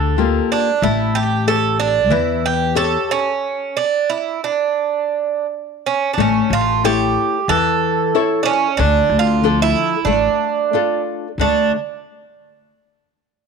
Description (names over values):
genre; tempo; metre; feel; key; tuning
fado-style ballad; 80-98 BPM; 4/4; rubato; D harmonic minor; A4 = 440 Hz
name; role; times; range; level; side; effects
Irish bouzouki; melody; 0.0-11.7 s; C#4 to A4; -17 LUFS; right 9 dB; slapback echo
nylon-string guitar; accompaniment; 0.0-11.7 s; D3 to C#5; -20 LUFS; left 14 dB; none
upright bass; bass; 0.0-11.7 s; A1 to E2; -20 LUFS; left 2 dB; none
room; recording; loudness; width
light reverb; 1960s-style stereo with parts hard left and right; -15 LUFS; side -5 dB against mid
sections
0.0-6.2 A section; 6.2-11.4 B section; 11.4-13.5 C section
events
stop 3.4-6.2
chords
0.0 Gm7; 0.8 A7; 3.4 N.C.; 6.2 A; 8.8 Dm; 11.4 D5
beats
0.19 | 0.82 1.46 2.10 2.75 | 3.40 4.07 4.75 5.48 | 6.18 6.84 7.50 8.15 | 8.79 9.43 10.06 10.72 | 11.39